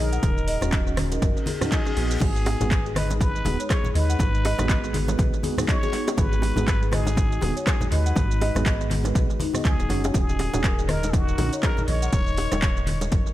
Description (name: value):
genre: afro house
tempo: 121 BPM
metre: 4/4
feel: swing 58% on 16ths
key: G# minor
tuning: A4 = 441 Hz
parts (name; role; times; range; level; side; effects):
- trumpet with plunger mute; melody; 0.0-13.3 s; F#4 to C#5; -32 LUFS; equal; analog delay
- dark analog pad; sustained chords; 0.0-13.3 s; G#3 to D#5; -35 LUFS; left 2 dB; chorus, phaser, vintage 12-bit sampler grit, sidechain pumping
- marimba with soft mallets; arpeggios; 0.0-12.1 s; D#4 to G#5; -33 LUFS; left 1 dB; sidechain pumping, analog delay
- round analog bass; bass; 0.0-13.2 s; D#1 to D#2; -26 LUFS; equal; sidechain pumping
- afro-pop drum kit; drums; 0.1-13.3 s; crash cymbal, handclaps, hi-hat, rim click, shaker; -32 LUFS; right 1 dB; studio reverb, analog delay
- electronic kick drum; drums; 0.2-13.2 s; none; -24 LUFS; equal; overdrive, studio reverb
- congas; percussion; 0.2-13.2 s; none; -32 LUFS; left 1 dB; analog delay
- mellow tine electric piano; stabs; 0.6-11.5 s; B3 to G#4; -32 LUFS; right 1 dB; medium stereo tremolo, sidechain pumping, analog delay
- reverse cymbal; sound effects; 1.4-2.2 s; none; -37 LUFS; left 1 dB; none
- bongos; percussion; 2.2-13.1 s; none; -32 LUFS; right 1 dB; analog delay
room: little or no reverb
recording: echo-heavy mix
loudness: -20 LUFS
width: side -14 dB against mid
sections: 0.0-13.3 A section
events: reverse cymbal 1.4-2.2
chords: 0.0 D#m7; 2.2 G#m7; 10.1 D#m7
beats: | 0.23 0.72 1.22 1.72 | 2.21 2.71 3.20 3.70 | 4.20 4.69 5.19 5.68 | 6.18 6.67 7.17 7.67 | 8.16 8.66 9.15 9.65 | 10.14 10.64 11.14 11.63 | 12.13 12.62 13.12